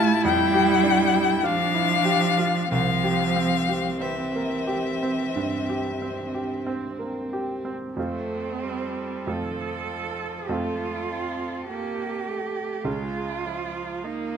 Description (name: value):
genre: classical, slow romantic movement for piano quartet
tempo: 44-52 BPM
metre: 4/4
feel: rubato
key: F major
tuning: A4 = 439 Hz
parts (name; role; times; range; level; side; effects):
- warm violin; melody; 0.0-14.4 s; A4 to A5; -27 LUFS; left 10 dB; none
- warm cello; second line; 0.0-14.4 s; E3 to A4; -28 LUFS; right 6 dB; none
- clear baby grand piano; accompaniment; 0.0-14.4 s; Bb1 to Ab4; -29 LUFS; right 1 dB; none
- warm viola; accompaniment; 0.0-14.4 s; F3 to E4; -30 LUFS; right 2 dB; none
room: moderate recital hall reverb, RT60 1.4 s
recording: close, detailed microphones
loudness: -23 LUFS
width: side -7 dB against mid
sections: 0.0-8.0 A section; 8.0-14.4 B section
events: none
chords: 0.0 Bb6; 2.7 C; 8.0 F; 12.9 Db